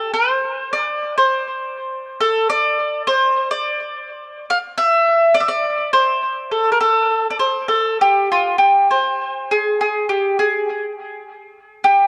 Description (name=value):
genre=fado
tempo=103 BPM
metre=4/4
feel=rubato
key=unclear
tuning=A4 = 444 Hz
part: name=mandolin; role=solo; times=0.0-12.1 s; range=F4 to F5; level=-18 LUFS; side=equal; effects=dub echo
room=moderate echo chamber reverb, RT60 1.3 s, small room ambience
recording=echo-heavy mix, cassette tape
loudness=-18 LUFS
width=mono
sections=0.0-9.4 A section; 9.4-12.1 B section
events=none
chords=none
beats=| 0.11 0.70 1.29 1.87 | 2.45 3.03 3.61 4.18 | 4.75 5.32 5.89 6.47 | 7.05 7.64 8.24 8.84 | 9.45 10.04 10.63 11.22 | 11.81